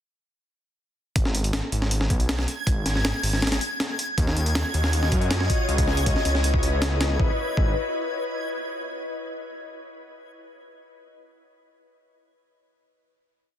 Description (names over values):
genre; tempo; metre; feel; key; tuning
drum and bass, jungle; 159 BPM; 4/4; straight; G# minor; A4 = 440 Hz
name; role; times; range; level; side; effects
detuned saw bass; bass; 1.2-7.7 s; G#1 to F#2; -24 LUFS; equal; none
breakbeat sampler-style drum kit; drums; 1.2-7.7 s; hi-hat, kick drum, snare drum; -24 LUFS; equal; none
backwards swelling texture; texture; 1.9-7.2 s; G#6; -33 LUFS; right 1 dB; built-in reverb
ethereal airy pad; sustained chords; 4.5-7.4 s; E4 to D#5; -29 LUFS; left 3 dB; ensemble chorus, built-in reverb, vintage 12-bit sampler grit
room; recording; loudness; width
light reverb, digital ambience; dense, heavily limited modern master; -22 LUFS; side -10 dB against mid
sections
1.2-7.2 drop; 7.2-8.7 final chord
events
drop 1.2-7.2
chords
1.2 G#m; 4.2 D#m9; 5.7 C#m9; 7.2 G#m9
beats
| 1.16 1.53 1.91 2.29 | 2.67 3.04 3.42 3.80 | 4.18 4.55 4.93 5.31 | 5.68 6.06 6.44 6.82 | 7.20 7.57